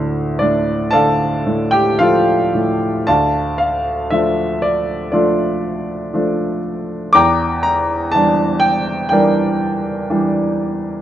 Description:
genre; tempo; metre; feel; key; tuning
classical, lyrical solo piano; 54-62 BPM; 4/4; rubato; D minor; A4 = 440 Hz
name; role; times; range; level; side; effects
clear baby grand piano; solo; 0.0-11.0 s; D2 to D6; -14 LUFS; equal; none
room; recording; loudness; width
wet spring reverb, RT60 1.2 s; none; -14 LUFS; side -11 dB against mid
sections
0.0-3.1 A section; 3.1-11.0 B section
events
none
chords
0.0 Dm; 7.2 Em7b5

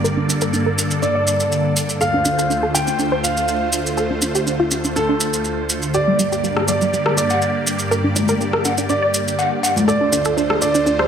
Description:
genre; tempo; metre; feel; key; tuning
progressive house; 122 BPM; 4/4; straight; G minor; A4 = 440 Hz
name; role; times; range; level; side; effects
supersaw pad; sustained chords; 0.0-11.1 s; D2 to D5; -21 LUFS; equal; phaser
wide unison pluck; arpeggios; 0.0-11.1 s; G3 to D5; -22 LUFS; right 1 dB; dub echo
maracas; percussion; 0.0-11.0 s; none; -23 LUFS; right 2 dB; none
warm concert grand piano; melody; 1.0-11.1 s; A4 to G5; -21 LUFS; right 1 dB; dub echo
electronic rim click, cowbell and congas; percussion; 6.6-11.1 s; none; -20 LUFS; left 3 dB; overdrive
room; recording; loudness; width
moderate digital room reverb, RT60 1.1 s, digital ambience; none; -16 LUFS; side -8 dB against mid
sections
0.0-11.1 A section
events
filter sweep on synth pluck 0.0-11.1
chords
0.0 Gm; 2.0 Dm7; 5.9 Gm; 9.9 Dm7

